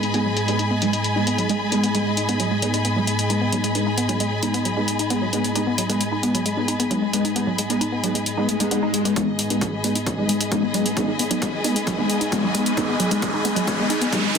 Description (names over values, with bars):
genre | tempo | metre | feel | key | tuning
driving peak-time techno | 133 BPM | 4/4 | straight | G# minor | A4 = 442 Hz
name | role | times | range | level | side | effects
woody wave-folded pluck | riff | 0.0-14.3 s | F#3 to D#4 | -26 LUFS | equal | chorus, sidechain pumping, ping-pong delay
rave stab | stabs | 0.0-14.4 s | G#3 to D#4 | -24 LUFS | equal | chorus, built-in reverb, sidechain pumping, dub echo
deep dark ambient pad | drone | 0.0-9.2 s | G#2 | -29 LUFS | right 1 dB | chorus, built-in reverb, sidechain pumping
electronic hi-hat | drums | 0.0-14.4 s | none | -26 LUFS | left 1 dB | sidechain pumping on hats, high-pass filter on hats, low-pass filter on hats, high-pass filter on room, low-pass filter on room
warm studio string section | texture | 0.0-14.4 s | G#4 to B5 | -26 LUFS | left 1 dB | sidechain pumping
swell and riser | sound effects | 8.4-14.4 s | none | -28 LUFS | right 1 dB | none
electronic kick drum | drums | 9.2-14.2 s | none | -29 LUFS | equal | high-pass filter on kick, high-pass filter on room
room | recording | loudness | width
moderate digital room reverb, RT60 1.3 s, digital ambience | dense, heavily limited modern master | -19 LUFS | side -6 dB against mid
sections
0.0-9.2 A section; 9.2-14.4 B section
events
filter sweep on synth arpeggio sound 0.0-9.2; swell 8.4-9.2; build-up 9.2-14.4; riser 9.2-14.4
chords
0.0 G#m